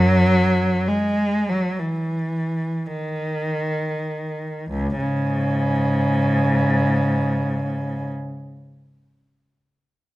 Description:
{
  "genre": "classical, free, expressive piece for unaccompanied cello",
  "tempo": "free time",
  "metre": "none",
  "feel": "none",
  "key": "C# minor",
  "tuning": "A4 = 440 Hz",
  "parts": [
    { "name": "rich cello", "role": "solo", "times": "0.0-8.1 s", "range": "C#2 to G#3", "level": "-19 LUFS", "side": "equal", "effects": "none" }
  ],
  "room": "moderate recital hall reverb, RT60 1.4 s",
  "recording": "close, detailed microphones",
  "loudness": "-19 LUFS",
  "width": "side -17 dB against mid",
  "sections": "0.0-4.7 A section; 4.7-10.2 B section",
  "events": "slowing down 0.0-4.7",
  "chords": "none"
}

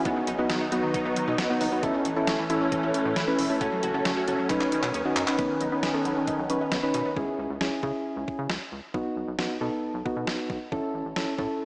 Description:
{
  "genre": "synth-pop",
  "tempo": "135 BPM",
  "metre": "4/4",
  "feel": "straight",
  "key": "unclear",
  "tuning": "A4 = 439 Hz",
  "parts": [
    { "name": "soft electric-piano-like synth keys", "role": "accompaniment", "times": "0.0-11.7 s", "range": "B3 to B4", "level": "-27 LUFS", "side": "equal", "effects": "chorus" },
    { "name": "soft string machine", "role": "sustained chords", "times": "0.0-7.1 s", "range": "D#3 to D#4", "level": "-30 LUFS", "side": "equal", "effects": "phaser, ensemble chorus" },
    { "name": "wide unison pluck", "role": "arpeggios", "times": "0.0-7.2 s", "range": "D#3 to F#4", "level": "-32 LUFS", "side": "equal", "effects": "analog chorus, diffuse ambient delay" },
    { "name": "rubbery square bass", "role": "bass", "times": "0.1-11.5 s", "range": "E1 to C#3", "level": "-36 LUFS", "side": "equal", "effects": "none" },
    { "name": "detuned 8-bit digital drum machine", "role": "drums", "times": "0.1-11.5 s", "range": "handclaps, hi-hat, kick drum, snare drum", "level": "-31 LUFS", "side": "equal", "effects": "none" }
  ],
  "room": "wet lush hall reverb, RT60 1.9 s",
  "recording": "dreamy mix soaked in reverb, small speaker sound",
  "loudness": "-24 LUFS",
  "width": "side -26 dB against mid",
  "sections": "0.0-5.4 A section; 5.4-7.2 B section; 7.2-11.7 C section",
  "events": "drum fill 4.5-5.4",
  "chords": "0.1 B; 1.8 A; 3.6 F#m; 4.5 Badd9; 7.2 C#m; 8.9 B; 10.7 A"
}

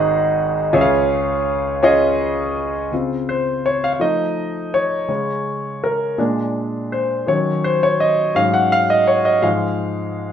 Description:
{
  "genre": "slow gospel",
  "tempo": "55 BPM (dotted quarters)",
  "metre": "6/8",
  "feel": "straight",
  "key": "Db major",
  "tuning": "A4 = 439 Hz",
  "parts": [
    { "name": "mellow tine electric piano", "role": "melody", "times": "0.0-2.1 s", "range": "Db5 to Eb5", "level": "-19 LUFS", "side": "right 6 dB", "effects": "slow stereo tremolo" },
    { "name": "warm grand piano", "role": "accompaniment", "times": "0.0-10.3 s", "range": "Ab1 to Gb5", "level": "-16 LUFS", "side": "left 1 dB", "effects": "none" }
  ],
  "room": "moderate large studio reverb, RT60 1.0 s",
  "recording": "band playing live in one room",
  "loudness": "-16 LUFS",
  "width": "side -9 dB against mid",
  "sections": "0.0-2.9 A section; 2.9-10.3 B section",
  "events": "grand piano solo 2.9-10.3",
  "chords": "0.0 Ab7; 0.7 Db; 2.9 Dbmaj7; 4.0 Faug7; 5.1 Bbm7/Db; 6.2 Bb7; 7.3 Ebm7; 8.4 Ab7sus4; 9.4 Fm/Ab"
}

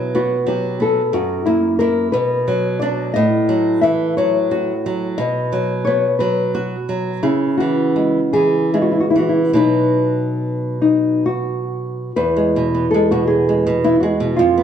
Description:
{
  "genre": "romantic duo for nylon-string guitar and classical guitar",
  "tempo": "43-63 BPM (dotted quarters)",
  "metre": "6/8",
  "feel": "rubato",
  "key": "E major from 3.1 s",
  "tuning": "A4 = 440 Hz",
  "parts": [
    { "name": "nylon-string guitar", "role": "melody", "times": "0.0-14.6 s", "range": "D#4 to E5", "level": "-18 LUFS", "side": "left 2 dB", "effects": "none" },
    { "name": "nylon-string guitar", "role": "accompaniment", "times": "0.0-14.6 s", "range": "E2 to F#4", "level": "-18 LUFS", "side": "right 2 dB", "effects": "none" }
  ],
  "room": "wet large studio reverb, RT60 1.5 s",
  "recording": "band playing live in one room",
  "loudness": "-15 LUFS",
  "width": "side -8 dB against mid",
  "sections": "0.0-12.2 A section; 12.2-14.6 B section",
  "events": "none",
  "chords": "0.0 B5; 1.1 F#7; 2.1 Bm; 3.1 F#m7/A; 5.2 B; 7.2 C#m; 9.6 B; 12.2 E"
}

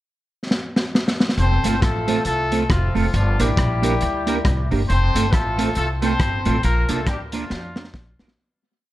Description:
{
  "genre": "ska",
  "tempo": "137 BPM",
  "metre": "4/4",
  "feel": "swing 59% on 8ths",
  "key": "F major",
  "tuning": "A4 = 440 Hz",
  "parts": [
    { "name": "crunchy breakbeat drum kit", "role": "drums", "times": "0.5-8.4 s", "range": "hi-hat, kick drum, rim click, snare drum", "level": "-22 LUFS", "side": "equal", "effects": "tape echo" },
    { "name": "clear horn section", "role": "melody", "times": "1.4-8.2 s", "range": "F3 to C5", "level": "-24 LUFS", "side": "left 2 dB", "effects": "tape echo" },
    { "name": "upright bass", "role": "bass", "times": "1.4-8.4 s", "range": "F1 to F2", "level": "-22 LUFS", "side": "equal", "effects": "none" },
    { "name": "mellow electric guitar", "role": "accompaniment", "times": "1.6-8.3 s", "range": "A3 to Bb4", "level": "-24 LUFS", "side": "right 4 dB", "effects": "ensemble chorus" }
  ],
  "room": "moderate studio reverb, RT60 0.8 s",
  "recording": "dark, warm production",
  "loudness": "-18 LUFS",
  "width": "side -15 dB against mid",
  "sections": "0.0-1.4 pickup bar; 1.4-8.4 head",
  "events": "drum fill 0.5-1.4, 7.5-8.4; fade-out 6.6-8.4",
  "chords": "0.0 N.C.; 1.4 F; 3.1 Gm; 4.9 F; 6.6 Bb"
}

